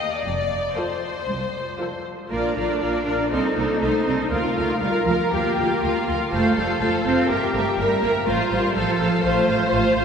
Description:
quick classical-period movement for string orchestra; 120 BPM; 4/4; uneven beats, rubato; Bb major; A4 = 440 Hz
clear symphonic violin section; melody; 0.0-10.0 s; C5 to F5; -28 LUFS; left 4 dB
warm studio violin section; second line; 0.0-10.0 s; D4 to Eb5; -25 LUFS; left 2 dB
clear symphonic viola section; accompaniment; 0.0-10.0 s; F3 to C5; -24 LUFS; right 1 dB
clear symphonic cello section; bass; 0.2-9.9 s; C2 to D4; -26 LUFS; right 2 dB
rich symphonic double bass section; bass; 0.2-10.0 s; F1 to D2; -30 LUFS; right 3 dB
wet cathedral reverb, RT60 5.0 s; minimal, uncompressed stereo recording; -19 LUFS; side -6 dB against mid
0.0-2.3 A section; 2.3-10.0 B section
0.2 F; 2.3 Bb; 3.3 Adim/C; 4.3 Bb/D; 6.3 F; 7.3 Edim/G; 8.3 F/A

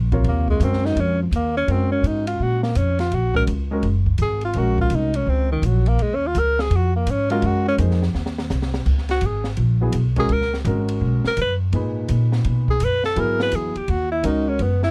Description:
modal jazz; 167 BPM; 4/4; swing 65% on 8ths; Eb dorian, C# dorian from 8.9 s; A4 = 440 Hz
upright bass; bass; 0.0-14.9 s; Gb1 to B2; -23 LUFS; equal
warm grand piano; accompaniment; 0.1-14.6 s; A#2 to Db5; -28 LUFS; equal
open jazz drum kit; drums; 0.1-14.9 s; crash cymbal, hi-hat, kick drum, ride cymbal, snare drum; -30 LUFS; equal
breathy tenor saxophone; melody; 0.3-14.9 s; Eb3 to B4; -24 LUFS; equal
little or no reverb; dark, warm production; -21 LUFS; mono
0.0-8.9 A section; 8.9-14.9 A section
tenor saxophone solo 0.0-14.9; drum fill 8.1-8.9
0.0 Ebm9; 8.9 C#9sus4

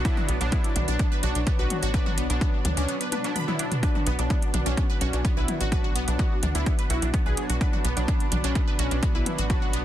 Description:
melodic techno; 127 BPM; 4/4; straight; B minor; A4 = 440 Hz
wide unison lead; melody; 0.0-9.7 s; C#4 to G#4; -34 LUFS; left 1 dB; sidechain pumping, tape echo
dark analog pad; sustained chords; 0.0-9.8 s; D4 to B5; -39 LUFS; left 1 dB; wide subtle chorus, sidechain pumping
sync-sweep polysynth; stabs; 0.0-9.8 s; F#3 to D4; -34 LUFS; right 2 dB; chorus, sidechain pumping, ping-pong delay
tight sequencer bass; bass; 0.0-9.8 s; A1 to D2; -27 LUFS; equal; tube saturation, sidechain pumping
swarming drone; drone; 0.0-9.8 s; B2 to B3; -42 LUFS; left 3 dB
wide unison pluck; arpeggios; 0.1-9.8 s; B3 to B5; -32 LUFS; right 1 dB; phaser, sidechain pumping, ping-pong delay
electronic kick drum; drums; 0.1-9.6 s; -24 LUFS; equal; overdrive
house drum kit; drums; 0.1-9.8 s; hi-hat, toms; -31 LUFS; left 1 dB; overdrive, sidechain pumping on hats, sidechain pumping on toms
little or no reverb; dense, heavily limited modern master; -22 LUFS; side -12 dB against mid
0.0-9.8 A section
drum fill 3.1-3.8
0.0 Bm

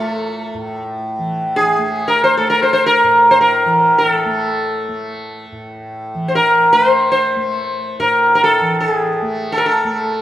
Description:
indian classical, Hindustani; free time; A raga todi; A4 = 440 Hz
sitar; melody; 0.0-10.2 s; A3 to C5; -13 LUFS; equal
tanpura; drone; 0.0-10.2 s; A2 to A3; -24 LUFS; right 1 dB
moderate recital hall reverb, RT60 1.6 s; -12 LUFS; side -13 dB against mid
0.0-1.2 A section; 1.2-10.2 A section

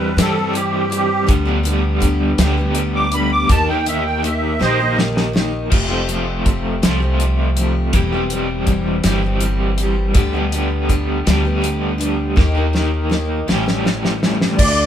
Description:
folk rock and heartland rock; 54 BPM (dotted quarters); 6/8; straight; G mixolydian; A4 = 439 Hz
musette accordion; melody; 0.0-5.0, 14.6-14.9 s; G4 to D6; -18 LUFS; right 2 dB
picked steel-string acoustic guitar; accompaniment; 0.0-14.9 s; A2 to G4; -24 LUFS; left 2 dB
crunchy overdriven guitar; riff; 0.0-14.6 s; A2 to G4; -21 LUFS; equal; tremolo
upright bass; bass; 0.0-14.9 s; E1 to G2; -20 LUFS; equal
damped 70s drum kit; drums; 0.2-14.8 s; crash cymbal, hi-hat, kick drum, snare drum; -18 LUFS; equal
light reverb; band playing live in one room; -15 LUFS; side -10 dB against mid
0.0-5.7 A section; 5.7-14.6 B section
accordion solo 0.0-5.7; drum fill 4.6-5.7, 12.4-14.6
0.0 C/E; 1.3 G/D; 3.5 Eb; 5.7 Fadd9; 7.9 C/E; 10.2 G/D; 12.4 Eb; 13.5 A7

